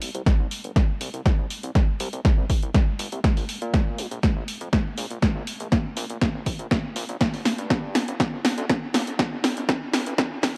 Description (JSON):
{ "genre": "progressive house", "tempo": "121 BPM", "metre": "4/4", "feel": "straight", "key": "unclear", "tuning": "A4 = 441 Hz", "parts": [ { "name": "fat analog bass", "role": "bass", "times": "0.0-10.4 s", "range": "G1 to Bb2", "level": "-36 LUFS", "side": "equal", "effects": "sidechain pumping, high-pass filter" }, { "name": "deep house drum kit", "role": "drums", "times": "0.0-10.5 s", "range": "hi-hat, snare drum", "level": "-28 LUFS", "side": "equal", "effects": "overdrive" }, { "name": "electronic kick drum", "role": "drums", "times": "0.3-10.5 s", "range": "none", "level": "-24 LUFS", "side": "equal", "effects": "none" } ], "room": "moderate lush hall reverb, RT60 1.7 s", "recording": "dark, warm production, high-pass filter", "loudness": "-24 LUFS", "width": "mono", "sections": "0.0-10.6 A section", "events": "build-up 0.0-10.6; drum fill 0.0-10.6; filter sweep 0.0-10.6", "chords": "none" }